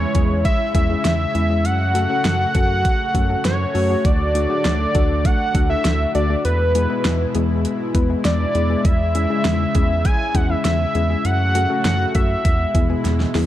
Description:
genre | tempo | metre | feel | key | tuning
synth-pop | 100 BPM | 4/4 | straight | unclear | A4 = 441 Hz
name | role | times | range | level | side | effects
fat analog lead | melody | 0.0-13.3 s | B4 to G#5 | -22 LUFS | equal | shimmer reverb
chorused pulse-width pad | sustained chords | 0.0-13.5 s | B2 to F#4 | -26 LUFS | equal | shimmer reverb
round analog bass | bass | 0.0-13.5 s | D2 to F#2 | -21 LUFS | equal | none
soft round pluck | accompaniment | 0.1-13.4 s | G#3 to B4 | -25 LUFS | left 6 dB | chorus, shimmer reverb
pop drum kit | drums | 0.1-13.5 s | hi-hat, kick drum, snare drum | -20 LUFS | right 1 dB | overdrive
room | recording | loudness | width
light reverb, digital ambience | dark, warm production | -16 LUFS | side -13 dB against mid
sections
0.0-13.5 A section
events
drum fill 13.0-13.5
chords
0.0 C#m; 1.6 F#m; 4.0 D; 6.4 E; 8.8 C#m; 11.2 F#m; 12.4 E

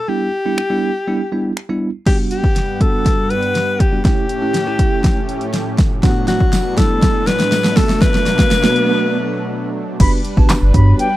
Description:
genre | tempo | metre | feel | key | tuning
dance-pop | 121 BPM | 4/4 | straight | unclear | A4 = 439 Hz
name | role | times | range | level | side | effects
clear alto saxophone | melody | 0.0-9.8 s | F#4 to B4 | -19 LUFS | left 3 dB | slapback echo
bell-like tine electric piano | accompaniment | 0.1-11.1 s | G3 to C#5 | -21 LUFS | right 3 dB | medium stereo tremolo
deep house drum kit | drums | 0.6-11.1 s | crash cymbal, finger snaps, handclaps, hi-hat, kick drum, snare drum | -14 LUFS | equal | overdrive
soft supersaw | sustained chords | 2.1-11.2 s | G2 to F#5 | -24 LUFS | right 1 dB | sidechain pumping
riser | sound effects | 4.5-9.0 s | none | -27 LUFS | right 1 dB | none
tambourine | percussion | 6.5-10.6 s | none | -33 LUFS | right 19 dB | none
mellow silver concert flute | melody | 10.0-11.2 s | G5 to B5 | -21 LUFS | left 2 dB | sidechain pumping, slapback echo
round analog bass | bass | 10.0-10.9 s | G1 to G2 | -11 LUFS | equal | sidechain pumping
room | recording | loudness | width
little or no reverb | dry, close 1970s-style studio recording | -13 LUFS | side -15 dB against mid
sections
0.0-2.1 A section; 2.1-10.0 B section; 10.0-11.2 C section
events
build-up 2.1-10.0; drum fill 2.1-9.0; riser 4.5-10.0; break 9.0-10.0; drop 10.0-11.2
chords
0.1 Em7; 2.1 Gmaj7; 4.0 A7; 6.0 D6/A; 7.8 Bm7; 10.0 Gmaj7

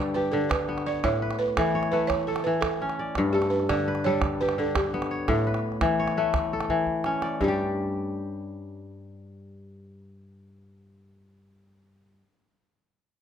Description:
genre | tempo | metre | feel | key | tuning
west african traditional, West African string and xylophone music | 113 BPM (dotted quarters) | 12/8 | straight | G lydian | A4 = 440 Hz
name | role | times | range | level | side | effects
balafon | melody | 0.0-12.1 s | G4 to D5 | -28 LUFS | right 4 dB | none
kora | arpeggios | 0.0-12.3 s | G2 to D5 | -26 LUFS | left 3 dB | none
calabash | percussion | 0.5-7.6 s | none | -32 LUFS | right 3 dB | none
room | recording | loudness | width
light reverb | close, detailed microphones | -24 LUFS | side -8 dB against mid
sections
0.0-7.4 A section; 7.4-11.6 B section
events
drum fill 6.7-7.4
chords
0.0 G; 1.0 A; 3.2 G; 5.3 A; 7.4 G5

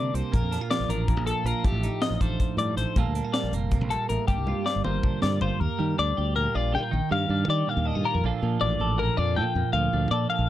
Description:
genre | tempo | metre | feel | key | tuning
math rock and midwest emo | 319 BPM (eighths) | 7/8 | straight | unclear | A4 = 440 Hz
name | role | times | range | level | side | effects
twelve-string electric guitar | accompaniment | 0.0-10.5 s | G2 to Bb4 | -29 LUFS | right 6 dB | none
twelve-string electric guitar | arpeggios | 0.0-10.5 s | G4 to G5 | -28 LUFS | left 6 dB | none
modern bright fingered electric bass | bass | 0.0-10.5 s | F1 to Eb3 | -27 LUFS | equal | none
crisp fusion drum kit | drums | 0.2-5.5 s | hi-hat, kick drum, snare drum, toms | -28 LUFS | equal | none
room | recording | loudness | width
little or no reverb | dark, warm production | -23 LUFS | side -13 dB against mid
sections
0.0-5.6 A section; 5.6-10.5 B section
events
drum fill 4.5-5.6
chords
0.3 Bbmaj7; 1.6 F13/A; 3.0 Gm9; 4.3 Gm7; 5.6 Ebmaj9; 8.2 Bbmaj7

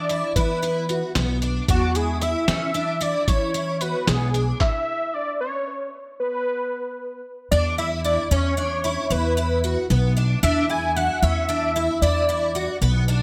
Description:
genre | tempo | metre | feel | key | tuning
progressive instrumental, band music in an uneven meter | 226 BPM (eighths) | 11/8 | straight | E mixolydian | A4 = 440 Hz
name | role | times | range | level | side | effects
unison lead | melody | 0.0-12.8 s | F#4 to G#5 | -27 LUFS | equal | digital delay
picked twelve-string acoustic guitar | arpeggios | 0.0-13.2 s | B3 to F#4 | -30 LUFS | equal | ensemble chorus
upright bass | bass | 0.0-13.2 s | B1 to E3 | -26 LUFS | equal | none
lo-fi sampler-style drum kit | drums | 0.1-4.7 s | handclaps, hi-hat, kick drum, snare drum | -26 LUFS | equal | gated reverb
room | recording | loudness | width
moderate plate reverb, RT60 1.8 s, studio reverb | bright 1980s-style digital production | -22 LUFS | mono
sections
0.0-7.5 A section; 7.5-13.2 B section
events
stop 4.6-7.5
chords
0.0 E5

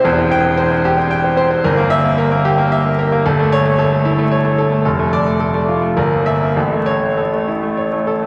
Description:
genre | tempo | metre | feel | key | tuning
classical, virtuoso piano study | 97-115 BPM | 3/4 | rubato | unclear | A4 = 436 Hz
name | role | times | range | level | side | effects
clear grand piano | solo | 0.0-8.3 s | E1 to G5 | -15 LUFS | equal | none
room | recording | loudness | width
wet church reverb, RT60 3.3 s | vinyl crackle | -15 LUFS | mono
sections
0.0-8.3 A section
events
none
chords
0.0 C/E; 1.6 Edim/G; 3.2 A7/G; 4.9 Dm/F; 6.0 Edim/G; 6.6 A

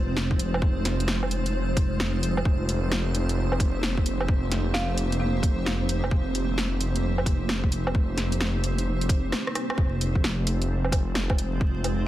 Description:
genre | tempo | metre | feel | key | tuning
future garage | 131 BPM | 4/4 | swing 64% on 16ths | F minor | A4 = 441 Hz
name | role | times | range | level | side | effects
granular cloud pad | sustained chords | 0.0-12.1 s | Ab3 to C5 | -31 LUFS | right 1 dB | built-in reverb, sidechain pumping
swelling detuned saw bass | bass | 0.0-12.1 s | F1 | -27 LUFS | equal | sidechain pumping
flickering grainy texture | texture | 0.0-9.8 s | C5 | -40 LUFS | left 1 dB | built-in reverb
garage drum kit | drums | 0.2-12.0 s | hi-hat, rim click, snare drum, woodblock | -29 LUFS | equal | overdrive, small room ambience
electronic kick drum | drums | 0.3-11.7 s | none | -23 LUFS | equal | overdrive, small room ambience
folk marimba with hard mallets | melody | 4.7-5.0 s | F5 | -35 LUFS | right 2 dB | tape echo
room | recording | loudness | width
little or no reverb | dense, heavily limited modern master, vinyl crackle | -23 LUFS | side -14 dB against mid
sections
0.0-9.8 A section; 9.8-12.1 A section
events
break 9.3-9.8; drum fill 9.3-9.8; band accent 9.7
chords
0.0 Fm7; 2.5 Eb6/F; 9.8 Fm7

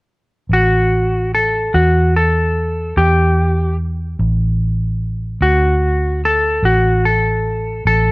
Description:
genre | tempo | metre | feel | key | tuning
slow blues | 49 BPM (dotted quarters) | 12/8 | straight | unclear | A4 = 439 Hz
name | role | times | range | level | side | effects
clean lap steel guitar | melody | 0.5-8.1 s | F#4 to A4 | -15 LUFS | left 1 dB | none
vintage muted fingered electric bass | bass | 0.5-8.1 s | A1 to E2 | -16 LUFS | equal | none
room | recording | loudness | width
light reverb | worn, warbling old tape, cassette tape, warbly pitch drift | -13 LUFS | side -23 dB against mid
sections
0.5-8.1 A section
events
electric slide guitar solo 0.5-8.1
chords
0.5 A5; 5.4 D

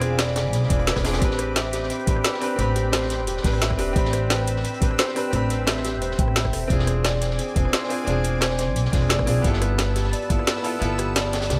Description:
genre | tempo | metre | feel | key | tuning
liquid drum and bass | 175 BPM | 4/4 | straight | A minor | A4 = 437 Hz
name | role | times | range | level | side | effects
clear concert grand piano | accompaniment | 0.0-11.6 s | B3 to B5 | -30 LUFS | equal | tape echo
lush unison pad | sustained chords | 0.0-11.6 s | C4 to E6 | -35 LUFS | equal | chorus, phaser
felt-muted upright piano | arpeggios | 0.0-11.6 s | G4 to G5 | -32 LUFS | equal | delay
upright bass | bass | 0.0-11.6 s | E1 to D2 | -27 LUFS | equal | none
crunchy breakbeat drum kit | drums | 0.0-11.6 s | hi-hat, snare drum | -34 LUFS | equal | high-pass filter on hats, small room ambience, high-pass filter on snare, high-pass filter on room
garage drum kit | drums | 0.0-11.6 s | hi-hat, rim click, snare drum | -28 LUFS | equal | overdrive, small room ambience
electronic kick drum | drums | 0.7-10.4 s | none | -26 LUFS | equal | overdrive, small room ambience
room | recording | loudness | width
light reverb, small room ambience | none | -22 LUFS | mono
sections
0.0-11.6 A section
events
none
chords
0.0 E7b9b13; 1.2 Am11; 6.7 E7b9b13; 9.4 G13

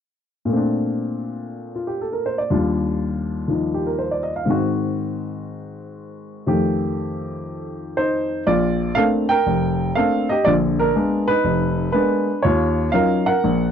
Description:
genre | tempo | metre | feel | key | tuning
solo jazz | 121 BPM | 4/4 | swing 68% on 8ths | Bb major | A4 = 440 Hz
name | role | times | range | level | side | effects
warm baby grand piano | solo | 0.5-13.7 s | F1 to G5 | -18 LUFS | equal | none
room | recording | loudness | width
light reverb | dry, close 1970s-style studio recording | -18 LUFS | side -8 dB against mid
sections
0.5-8.5 A section; 8.5-13.7 B section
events
none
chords
0.5 Bbmaj9; 2.5 Ebmaj9; 4.5 Ab7; 6.5 F9; 8.5 Bbmaj9; 10.5 Bb7b9; 12.4 Ebm9

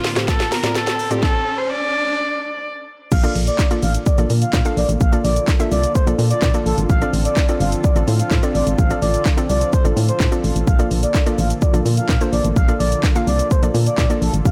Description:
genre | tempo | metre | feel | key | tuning
dance-pop | 127 BPM | 4/4 | straight | unclear | A4 = 439 Hz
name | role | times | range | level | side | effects
warm viola | melody | 0.0-2.6 s | F4 to D5 | -24 LUFS | equal | tape echo
hollow square pluck | accompaniment | 0.0-14.5 s | A2 to F5 | -27 LUFS | equal | chorus, sidechain pumping
warm analog pad | sustained chords | 0.0-14.5 s | A2 to A4 | -30 LUFS | equal | chorus, sidechain pumping
house drum kit | drums | 0.0-14.5 s | crash cymbal, handclaps, hi-hat, kick drum, shaker, snare drum | -21 LUFS | equal | overdrive
egg shaker | percussion | 0.0-14.5 s | none | -44 LUFS | equal | none
riser | sound effects | 0.0-2.2 s | none | -31 LUFS | equal | none
expressive synth lead | melody | 3.1-14.5 s | A4 to F5 | -26 LUFS | equal | chorus, sidechain pumping, tape echo
solid FM bass | bass | 3.1-14.5 s | G1 to Bb2 | -21 LUFS | equal | sidechain pumping
room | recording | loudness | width
digital ambience | blown-out, overdriven recording, overdrive | -18 LUFS | mono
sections
0.0-3.1 A section; 3.1-14.5 B section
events
build-up 0.0-3.1; drum fill 0.0-1.2; riser 0.0-3.1; stop 1.2-3.1; drop 3.1-14.5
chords
0.0 Dm7/A; 3.1 Bbmaj7; 6.9 Dm7; 10.7 Bbmaj7

